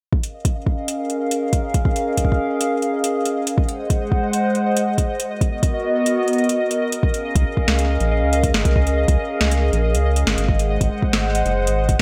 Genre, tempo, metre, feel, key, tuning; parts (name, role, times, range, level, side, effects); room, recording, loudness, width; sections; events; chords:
IDM; 139 BPM; 4/4; straight; Db major; A4 = 440 Hz
hollow soft pad; sustained chords; 0.1-12.0 s; Ab3 to Gb5; -24 LUFS; equal; chorus, sidechain pumping
electronic kick drum; drums; 0.1-12.0 s; -22 LUFS; equal; overdrive
pulsing gated texture; texture; 0.1-12.0 s; Eb5; -30 LUFS; equal; chorus, built-in reverb
booming analog drum machine; drums; 0.2-12.0 s; hi-hat, snare drum; -26 LUFS; equal; overdrive, delay
rubbery square bass; bass; 7.4-12.0 s; Gb1 to Db2; -22 LUFS; equal
moderate digital room reverb, RT60 1.1 s; -20 LUFS; mono
0.1-12.0 A section
0.1 Db6; 3.6 Ab7; 5.3 Cbmaj7; 7.0 Db6; 10.5 Ab7